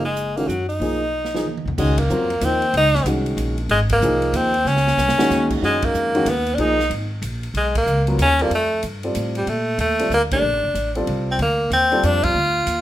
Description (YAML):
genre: modal jazz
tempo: 187 BPM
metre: 3/4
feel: swing 63% on 8ths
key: Bb major from 9.5 s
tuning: A4 = 440 Hz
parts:
  - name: edgy tenor saxophone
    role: melody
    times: 0.0-12.8 s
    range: F#3 to F4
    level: -19 LUFS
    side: equal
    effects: none
  - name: warm grand piano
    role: accompaniment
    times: 0.0-12.3 s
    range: D#3 to Bb4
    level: -24 LUFS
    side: equal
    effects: none
  - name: upright bass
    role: bass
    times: 0.0-12.8 s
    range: F1 to Bb2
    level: -23 LUFS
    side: equal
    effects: none
  - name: swinging big-band drum kit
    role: drums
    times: 0.2-12.8 s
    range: crash cymbal, hi-hat, kick drum, ride cymbal, snare drum, toms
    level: -30 LUFS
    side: right 2 dB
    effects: none
room: light reverb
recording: minimal, uncompressed stereo recording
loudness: -17 LUFS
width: side -13 dB against mid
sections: 0.0-1.8 A section; 1.8-9.5 B section; 9.5-12.8 C section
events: drum fill 1.1-1.8, 4.7-5.3; band accent 1.9, 3.9, 5.8, 7.7, 10.3, 12.2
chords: 0.0 Bmaj7; 1.8 Dbmaj9; 5.6 Cbmaj9; 8.5 Fadd9; 9.5 Bbmaj9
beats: 0.17 0.49 | 0.81 1.14 1.46 | 1.78 2.10 2.42 | 2.74 3.06 3.38 | 3.71 4.03 4.35 | 4.67 4.99 5.31 | 5.63 5.95 6.27 | 6.59 6.91 7.23 | 7.55 7.87 8.19 | 8.51 8.83 9.15 | 9.47 9.79 10.11 | 10.43 10.75 11.07 | 11.39 11.71 12.03 | 12.35 12.67